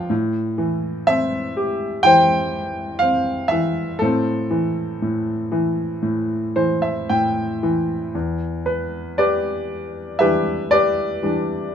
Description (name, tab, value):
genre	classical, lyrical solo piano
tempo	55-62 BPM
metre	4/4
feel	rubato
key	A minor, E minor from 8.1 s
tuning	A4 = 443 Hz
part	clear grand piano	solo	0.0-11.7 s	E2 to A5	-18 LUFS	equal	none
room	light reverb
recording	minimal, uncompressed stereo recording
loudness	-18 LUFS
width	side -8 dB against mid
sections	0.0-8.1 A section; 8.1-11.7 B section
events	grand piano fill 6.0-8.1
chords	0.1 Am7; 8.1 Em7